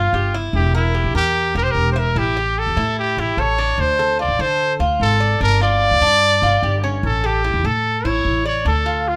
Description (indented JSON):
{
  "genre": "latin, Cuban son and guajira",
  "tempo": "148 BPM",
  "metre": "4/4",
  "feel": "straight",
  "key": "D minor",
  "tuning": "A4 = 442 Hz",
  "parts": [
    { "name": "bright trumpet", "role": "melody", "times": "0.0-9.2 s", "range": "E4 to D5", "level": "-20 LUFS", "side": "equal", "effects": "none" },
    { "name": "Cuban tres", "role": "arpeggios", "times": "0.0-9.2 s", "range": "C#4 to E5", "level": "-26 LUFS", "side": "equal", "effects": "none" },
    { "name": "upright bass", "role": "bass", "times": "0.0-9.1 s", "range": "E1 to D3", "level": "-23 LUFS", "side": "equal", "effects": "none" }
  ],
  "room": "moderate large studio reverb, RT60 1.0 s",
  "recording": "none",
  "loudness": "-18 LUFS",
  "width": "mono",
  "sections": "0.0-9.2 A section",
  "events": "none",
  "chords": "0.0 G5; 0.5 Edim; 2.2 A7; 3.8 Dm7; 5.4 G5; 7.0 A; 8.7 Dm",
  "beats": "0.13 | 0.54 0.95 1.35 1.76 | 2.16 2.57 2.98 3.38 | 3.79 4.19 4.60 5.01 | 5.41 5.82 6.22 6.63 | 7.04 7.44 7.85 8.25 | 8.66 9.07"
}